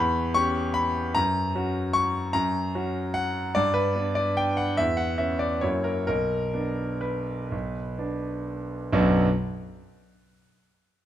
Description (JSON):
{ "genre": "classical, piano waltz", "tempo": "116-157 BPM", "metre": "3/4", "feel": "rubato", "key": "B minor", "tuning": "A4 = 440 Hz", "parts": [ { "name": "clear concert grand piano", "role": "solo", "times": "0.0-9.3 s", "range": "B1 to C#6", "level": "-23 LUFS", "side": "equal", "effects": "none" } ], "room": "moderate recital hall reverb, RT60 1.5 s", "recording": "close, detailed microphones", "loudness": "-24 LUFS", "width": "side -11 dB against mid", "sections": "0.0-8.9 A section; 8.9-10.3 B section", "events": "slowing down 5.4-8.9", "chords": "0.0 C#m7b5/E; 1.1 F#; 3.6 G; 4.8 Dmaj13/E; 5.6 F#7; 6.1 Bm" }